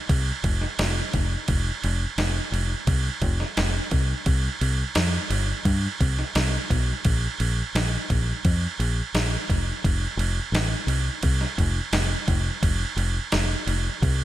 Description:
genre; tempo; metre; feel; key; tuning
rock, shoegaze and dream pop; 86 BPM; 4/4; straight; unclear; A4 = 440 Hz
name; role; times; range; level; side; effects
fingered electric bass; bass; 0.1-14.2 s; F1 to G2; -24 LUFS; equal; none
crisp 8-bit digital drum machine; drums; 0.1-14.2 s; crash cymbal, kick drum, snare drum; -25 LUFS; right 1 dB; none
room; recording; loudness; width
light reverb; none; -22 LUFS; side -14 dB against mid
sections
0.0-14.2 A section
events
none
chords
none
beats
0.09 0.79 | 1.48 2.18 2.88 3.57 | 4.27 4.97 5.66 6.36 | 7.05 7.75 8.45 9.14 | 9.84 10.54 11.23 11.93 | 12.62 13.32 14.02

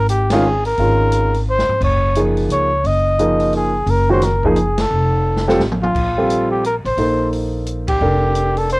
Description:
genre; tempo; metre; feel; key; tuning
modal jazz; 174 BPM; 3/4; swing 63% on 8ths; unclear; A4 = 440 Hz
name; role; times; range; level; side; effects
breathy trumpet; melody; 0.0-8.8 s; F4 to Eb5; -18 LUFS; equal; cassette tape
upright bass; bass; 0.0-8.8 s; F1 to Db2; -19 LUFS; equal; tube saturation
open jazz drum kit; drums; 0.1-8.8 s; crash cymbal, hi-hat, kick drum, ride cymbal, snare drum, toms; -26 LUFS; equal; cassette tape
warm grand piano; accompaniment; 0.3-8.8 s; Eb3 to C5; -18 LUFS; right 1 dB; cassette tape
room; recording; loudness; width
light reverb; home recording on cassette; -14 LUFS; side -25 dB against mid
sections
0.0-5.9 A section; 5.9-8.8 B section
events
band accent 0.3, 4.7, 7.8; drum fill 1.5-1.8, 5.3-5.9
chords
0.0 Absus2; 1.8 Gbmaj9; 4.9 F; 5.9 Bbmaj9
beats
0.10 0.45 | 0.79 1.13 1.48 | 1.82 2.16 2.51 | 2.85 3.19 3.54 | 3.88 4.23 4.57 | 4.91 5.26 5.60 | 5.95 6.29 6.63 | 6.98 7.32 7.67 | 8.01 8.36 8.70

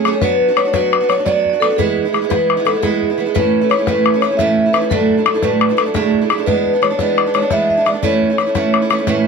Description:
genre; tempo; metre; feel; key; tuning
celtic folk, Celtic slip jig; 115 BPM (dotted quarters); 9/8; straight; A major; A4 = 440 Hz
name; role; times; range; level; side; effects
vibraphone with soft mallets; melody; 0.0-9.2 s; G#4 to E5; -16 LUFS; equal; none
picked old ladder-braced acoustic guitar; accompaniment; 0.0-9.3 s; D2 to G#4; -18 LUFS; right 5 dB; none
bodhran; percussion; 0.1-9.2 s; none; -19 LUFS; left 8 dB; none
room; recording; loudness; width
moderate studio reverb, RT60 0.6 s; none; -13 LUFS; side -5 dB against mid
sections
0.0-9.3 A section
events
none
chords
0.2 Bm/F#; 1.8 E; 3.3 A; 4.9 Dadd9; 6.5 E7; 8.0 A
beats
| 0.22 0.74 1.26 | 1.78 2.31 2.83 | 3.35 3.87 4.39 | 4.91 5.43 5.95 | 6.47 6.99 7.51 | 8.03 8.55 9.07

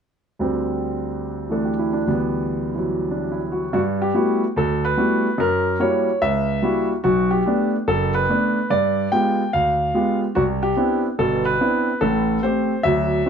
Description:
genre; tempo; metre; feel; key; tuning
jazz; 145 BPM; 4/4; swing 65% on 8ths; G major; A4 = 440 Hz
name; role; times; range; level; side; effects
clear concert grand piano; solo; 0.4-13.3 s; F#1 to G5; -18 LUFS; equal; none
room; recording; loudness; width
moderate studio reverb, RT60 0.8 s; dark, warm production; -18 LUFS; side -7 dB against mid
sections
0.4-3.7 A section; 3.7-13.3 B section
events
none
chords
0.4 D7sus4; 2.1 G6/D; 3.7 Gmaj13; 5.4 F#7b9; 7.0 Bm7; 8.7 G7b9; 10.4 Cmaj9; 12.0 Am7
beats
| 0.41 0.82 1.24 1.66 | 2.07 2.49 2.90 3.32 | 3.73 4.15 4.56 4.97 | 5.39 5.80 6.22 6.63 | 7.05 7.46 7.88 8.29 | 8.70 9.12 9.53 9.95 | 10.36 10.77 11.19 11.60 | 12.01 12.43 12.84 13.25

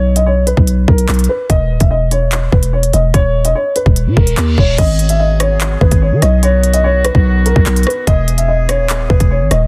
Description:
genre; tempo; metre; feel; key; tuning
hip hop, drill; 146 BPM; 4/4; half-time; unclear; A4 = 444 Hz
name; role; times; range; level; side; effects
dark concert grand piano; melody; 0.0-9.7 s; A#4 to Fb5; -19 LUFS; equal; delay
growling 808-style bass; bass; 0.0-9.7 s; Eb1 to Eb3; -15 LUFS; equal; none
drill drum kit; drums; 0.2-9.6 s; crash cymbal, handclaps, hi-hat, kick drum, rim click; -16 LUFS; equal; none
reverse cymbal; sound effects; 4.1-4.8 s; none; -28 LUFS; equal; none
warm woodwind section; sustained chords; 4.8-9.7 s; D#3 to G#4; -27 LUFS; equal; none
room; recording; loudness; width
little or no reverb; dense, heavily limited modern master; -13 LUFS; mono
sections
0.0-4.8 A section; 4.8-9.7 B section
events
reverse cymbal 4.1-4.8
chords
0.0 Bmaj7sus2; 1.5 Dbmadd9/Eb; 3.1 Eb5; 4.8 Abm7; 6.4 B; 8.1 E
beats
0.26 0.68 1.09 | 1.50 1.91 2.32 2.73 | 3.14 3.55 3.96 4.37 | 4.78 5.20 5.61 6.02 | 6.43 6.84 7.25 7.66 | 8.07 8.48 8.89 9.30

